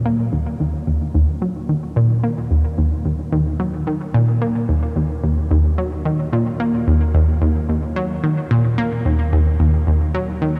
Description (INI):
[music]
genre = ambient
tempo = 110 BPM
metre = 4/4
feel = straight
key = Eb minor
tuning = A4 = 441 Hz
[part]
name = analog pluck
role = solo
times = 0.1-10.6 s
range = Eb2 to Bb3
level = -18 LUFS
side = equal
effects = chorus, analog delay
[sound]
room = wet huge ambient reverb, RT60 8.6 s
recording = dark, warm production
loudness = -19 LUFS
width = mono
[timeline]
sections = 0.0-10.6 A section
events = none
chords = none